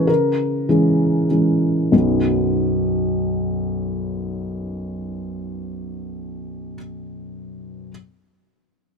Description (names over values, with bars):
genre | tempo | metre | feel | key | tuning
neoclassical minimalist piano | 96 BPM | 3/4 | rubato | B major | A4 = 441 Hz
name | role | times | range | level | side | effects
felt-muted upright piano | solo | 0.0-7.9 s | B1 to C#5 | -19 LUFS | equal | none
room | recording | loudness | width
little or no reverb | close, detailed microphones | -17 LUFS | side -5 dB against mid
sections
0.0-1.9 A section; 1.9-5.7 B section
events
slowing down 0.0-1.9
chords
0.0 C#m; 1.9 B